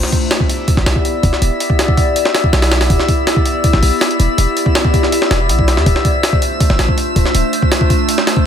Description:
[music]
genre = drum and bass, jungle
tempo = 162 BPM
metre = 4/4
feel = straight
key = E phrygian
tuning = A4 = 440 Hz
[part]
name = warm 808-style bass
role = bass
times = 0.0-7.4 s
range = D1 to E2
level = -14 LUFS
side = equal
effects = none
[part]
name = jungle sampler-style drum kit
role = drums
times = 0.0-8.5 s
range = hi-hat, kick drum, snare drum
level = -14 LUFS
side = equal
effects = none
[part]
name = drifting glass-harmonics texture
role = texture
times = 0.3-8.5 s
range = E5 to E6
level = -21 LUFS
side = left 2 dB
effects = chorus, built-in reverb
[sound]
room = digital ambience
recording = none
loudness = -11 LUFS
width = side -8 dB against mid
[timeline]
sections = 0.0-8.5 A section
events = none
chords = 0.0 Em7; 5.9 Dm7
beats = 0.31 0.68 1.05 | 1.42 1.79 2.16 2.53 | 2.90 3.27 3.64 4.01 | 4.38 4.75 5.12 5.49 | 5.86 6.23 6.61 6.97 | 7.34 7.72 8.09 8.46

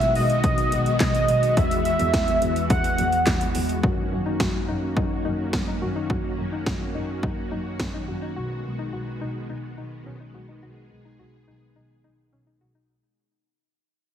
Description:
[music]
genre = synth-pop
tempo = 106 BPM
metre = 4/4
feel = straight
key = F# mixolydian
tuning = A4 = 440 Hz
[part]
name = warm velvety synth lead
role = melody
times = 0.0-3.5 s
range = D#5 to F#5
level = -23 LUFS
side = equal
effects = chorus, tape echo
[part]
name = string machine, violas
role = sustained chords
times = 0.0-12.9 s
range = D#3 to G#4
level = -30 LUFS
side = equal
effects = ensemble chorus
[part]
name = dark double bass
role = bass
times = 0.0-12.8 s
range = B1 to F#2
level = -28 LUFS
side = equal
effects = none
[part]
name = 80s electronic pad drums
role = drums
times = 0.0-7.9 s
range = handclaps, hi-hat, kick drum, snare drum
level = -26 LUFS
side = equal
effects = overdrive
[part]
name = soft round pluck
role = arpeggios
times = 3.8-12.9 s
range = C#4 to F#4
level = -34 LUFS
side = left 4 dB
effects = chorus, tape echo
[sound]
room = moderate lush hall reverb, RT60 1.9 s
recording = heavily compressed radio sound, multiband compression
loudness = -21 LUFS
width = side -9 dB against mid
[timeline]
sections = 0.0-3.8 A section; 3.8-12.9 B section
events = fade-out 3.8-12.9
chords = 0.0 B6; 1.6 Eadd9; 3.8 F#6; 8.4 B6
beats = 0.44 1.00 | 1.57 2.14 2.70 3.27 | 3.83 4.40 4.97 5.53 | 6.10 6.67 7.23 7.80 | 8.36 8.93 9.49 10.06 | 10.63 11.19 11.76 12.32

